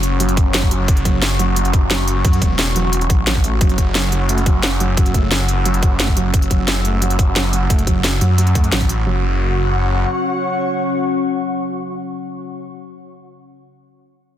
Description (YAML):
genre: dark technical drum and bass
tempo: 176 BPM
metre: 4/4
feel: straight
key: unclear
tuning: A4 = 436 Hz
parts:
  - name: deep dark ambient pad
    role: sustained chords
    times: 0.0-12.6 s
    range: C#4 to C#5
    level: -26 LUFS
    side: left 3 dB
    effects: chorus, built-in reverb, sidechain pumping
  - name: snarling distorted saw bass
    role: bass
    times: 0.0-10.0 s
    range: E1 to F#2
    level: -18 LUFS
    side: equal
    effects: distortion, tube saturation, sidechain pumping
  - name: drum and bass drum kit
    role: drums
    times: 0.0-9.0 s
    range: hi-hat, snare drum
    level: -20 LUFS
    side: equal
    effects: none
  - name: airy breathy pad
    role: texture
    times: 0.0-12.6 s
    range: C#4 to E6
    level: -24 LUFS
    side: equal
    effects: chorus, sidechain pumping
  - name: felt-muted upright piano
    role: arpeggios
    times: 0.2-9.2 s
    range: F#3 to A3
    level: -24 LUFS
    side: right 5 dB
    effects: sidechain pumping, low-pass filter, dub echo
  - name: electronic kick drum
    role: drums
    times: 0.4-8.9 s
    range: none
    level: -15 LUFS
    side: equal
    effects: none
room: light reverb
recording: dense, heavily limited modern master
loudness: -14 LUFS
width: side -11 dB against mid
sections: 0.0-9.1 A section; 9.1-11.8 B section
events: none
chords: 0.0 F#5